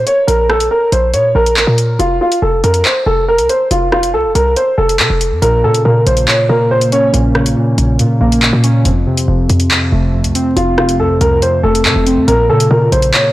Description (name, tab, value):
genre	hip hop, drill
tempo	140 BPM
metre	4/4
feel	half-time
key	Bb harmonic minor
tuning	A4 = 440 Hz
part	short 808-style bass	bass	0.0-13.1 s	F1 to C3	-15 LUFS	equal	none
part	dark grand piano	melody	0.1-7.1, 10.6-13.3 s	F4 to Db5	-13 LUFS	equal	none
part	drill drum kit	drums	0.1-13.2 s	handclaps, hi-hat, rim click	-16 LUFS	equal	none
part	warbly lo-fi synth keys	accompaniment	5.4-13.3 s	F2 to Db4	-14 LUFS	equal	chorus
room	light reverb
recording	blown-out, overdriven recording, vinyl crackle, overdrive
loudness	-10 LUFS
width	side -16 dB against mid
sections	0.0-13.3 A section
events	none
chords	0.0 N.C.; 2.0 F; 5.4 Bbm; 8.9 F; 12.3 Bbm